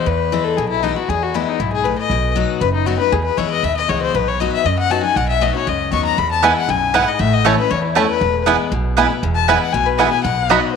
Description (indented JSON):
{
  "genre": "bluegrass",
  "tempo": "236 BPM",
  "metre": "4/4",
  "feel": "straight",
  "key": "E major",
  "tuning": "A4 = 438 Hz",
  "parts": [
    { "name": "rich fiddle", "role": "second line", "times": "0.0-10.7 s", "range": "D#4 to C#6", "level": "-18 LUFS", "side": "left 8 dB", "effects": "none" },
    { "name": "picked steel-string acoustic guitar", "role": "accompaniment", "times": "0.0-10.7 s", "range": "E2 to F#4", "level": "-22 LUFS", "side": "left 8 dB", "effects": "none" },
    { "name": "upright bass", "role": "bass", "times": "0.1-10.6 s", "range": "E1 to F#2", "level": "-22 LUFS", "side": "right 2 dB", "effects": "none" },
    { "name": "bluegrass banjo", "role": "melody", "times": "6.4-10.6 s", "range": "A3 to F#4", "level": "-22 LUFS", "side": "right 4 dB", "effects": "slapback echo" },
    { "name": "mandolin", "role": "stabs", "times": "6.4-10.6 s", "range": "A3 to B5", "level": "-19 LUFS", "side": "right 11 dB", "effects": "slapback echo" }
  ],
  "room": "wet spring reverb, RT60 2.2 s",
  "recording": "1960s-style stereo with parts hard left and right",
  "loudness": "-15 LUFS",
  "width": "side -6 dB against mid",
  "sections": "0.0-10.8 A section",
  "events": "fiddle solo 0.0-10.8",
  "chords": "0.0 E; 2.1 B; 3.1 E; 4.1 B; 6.2 E; 7.2 A; 8.2 E; 10.2 B"
}